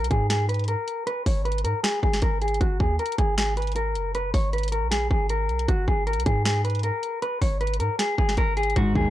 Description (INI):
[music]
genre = hip hop, trap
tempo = 156 BPM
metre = 4/4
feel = half-time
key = G# minor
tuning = A4 = 437 Hz
[part]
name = clean electric guitar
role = melody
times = 0.0-9.1 s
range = F#4 to C#5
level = -26 LUFS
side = left 1 dB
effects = low-pass filter, tape echo
[part]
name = warm 808-style bass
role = bass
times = 0.0-9.1 s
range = F#1 to G#2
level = -26 LUFS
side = equal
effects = none
[part]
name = trap drum kit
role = drums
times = 0.0-9.0 s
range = hi-hat, kick drum, snare drum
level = -26 LUFS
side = equal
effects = vintage 12-bit sampler grit
[part]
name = dark concert grand piano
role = accompaniment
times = 8.8-9.1 s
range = G#2 to D#3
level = -22 LUFS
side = left 1 dB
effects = low-pass filter
[sound]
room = little or no reverb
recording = dry, gritty hardware recording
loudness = -22 LUFS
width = side -13 dB against mid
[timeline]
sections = 0.0-9.1 A section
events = filter sweep 0.0-8.8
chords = none